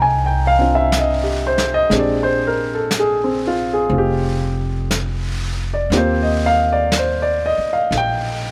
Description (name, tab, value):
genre	jazz ballad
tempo	60 BPM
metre	4/4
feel	swing 67% on 8ths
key	Eb major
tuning	A4 = 440 Hz
part	warm concert grand piano	accompaniment	0.0-8.5 s	Ab3 to Bb5	-19 LUFS	equal	none
part	upright bass	bass	0.0-8.5 s	F1 to Eb2	-24 LUFS	equal	none
part	vintage brush drum kit	drums	0.9-8.5 s	brushed snare drum, hi-hat, snare drum	-28 LUFS	equal	none
room	light reverb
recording	none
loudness	-18 LUFS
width	mono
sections	0.0-8.5 A section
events	none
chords	0.0 Fm9; 1.9 Bb13; 5.9 Eb6